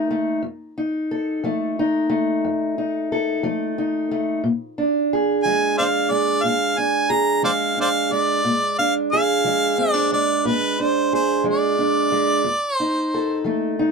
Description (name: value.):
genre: acoustic country blues, solo or duo.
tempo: 60 BPM (dotted quarters).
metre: 12/8.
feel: straight.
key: unclear.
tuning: A4 = 440 Hz.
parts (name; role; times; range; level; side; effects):
fingerpicked steel-string acoustic guitar; accompaniment; 0.0-13.9 s; F2 to A4; -20 LUFS; right 1 dB; none.
clear harmonica; melody; 5.4-13.4 s; B4 to Bb5; -20 LUFS; right 1 dB; none.
room: moderate booth ambience, RT60 0.2 s.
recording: none.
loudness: -18 LUFS.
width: side -4 dB against mid.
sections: 0.0-13.9 A section.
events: none.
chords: 0.0 F7; 4.4 Bb7; 12.4 F7.